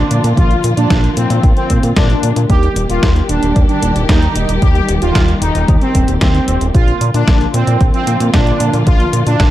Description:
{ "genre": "italo disco", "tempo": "113 BPM", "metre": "4/4", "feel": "straight", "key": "Bb major", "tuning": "A4 = 440 Hz", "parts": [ { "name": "analog synth brass", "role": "melody", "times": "0.0-9.5 s", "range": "C4 to G4", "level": "-18 LUFS", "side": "right 1 dB", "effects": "chorus, tape echo" }, { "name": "dark studio string section", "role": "sustained chords", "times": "0.0-9.5 s", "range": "D3 to G4", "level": "-20 LUFS", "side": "left 2 dB", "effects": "none" }, { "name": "fat analog bass", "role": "bass", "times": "0.0-9.5 s", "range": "Eb1 to Bb2", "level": "-15 LUFS", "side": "equal", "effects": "tube saturation" }, { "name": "detuned 8-bit digital drum machine", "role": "drums", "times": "0.1-9.5 s", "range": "hi-hat, snare drum", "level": "-21 LUFS", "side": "equal", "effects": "overdrive" }, { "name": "electronic kick drum", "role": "drums", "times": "0.4-9.5 s", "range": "none", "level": "-13 LUFS", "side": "equal", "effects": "none" } ], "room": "light reverb", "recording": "dark, warm production", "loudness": "-10 LUFS", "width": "side -14 dB against mid", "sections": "0.0-9.5 A section", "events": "none", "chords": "0.0 Bb; 2.5 Eb; 6.7 Bb" }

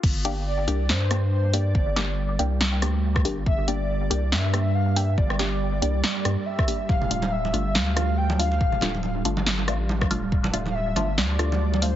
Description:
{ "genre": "deep dubstep", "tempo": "140 BPM", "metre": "4/4", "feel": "swing 57% on 16ths, half-time", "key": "G dorian", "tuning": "A4 = 440 Hz", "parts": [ { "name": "deep dark ambient pad", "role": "sustained chords", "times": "1.2-12.0 s", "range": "G3", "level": "-32 LUFS", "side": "right 3 dB", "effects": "chorus, built-in reverb" }, { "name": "saturated sub bass", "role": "bass", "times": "0.0-12.0 s", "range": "D1 to G2", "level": "-25 LUFS", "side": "equal", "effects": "none" }, { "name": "deep house drum kit", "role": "drums", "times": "0.0-11.9 s", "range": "crash cymbal, hi-hat, rim click, snare drum", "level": "-27 LUFS", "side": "equal", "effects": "low-pass filter on cymbals, low-pass filter on hats, low-pass filter on snare, low-pass filter on room" }, { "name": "electronic kick drum", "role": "drums", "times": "0.0-10.4 s", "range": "none", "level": "-24 LUFS", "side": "equal", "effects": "none" }, { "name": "filtered dub chord stab", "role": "stabs", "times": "0.2-11.9 s", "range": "A3 to G4", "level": "-31 LUFS", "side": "left 2 dB", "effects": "phaser, dub echo" }, { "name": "breathy flute-like synth lead", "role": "melody", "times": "0.5-12.0 s", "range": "C5 to G5", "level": "-30 LUFS", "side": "left 1 dB", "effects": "analog chorus, vintage 12-bit sampler grit, dub echo" }, { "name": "congas", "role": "percussion", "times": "6.9-11.8 s", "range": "none", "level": "-31 LUFS", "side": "right 3 dB", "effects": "none" } ], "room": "light reverb, digital ambience", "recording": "heavily compressed radio sound, multiband compression, nothing above 7.7 kHz", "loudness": "-21 LUFS", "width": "side -12 dB against mid", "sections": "0.0-12.0 A section", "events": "drop 0.0-12.0", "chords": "0.0 Gm; 6.9 Dm" }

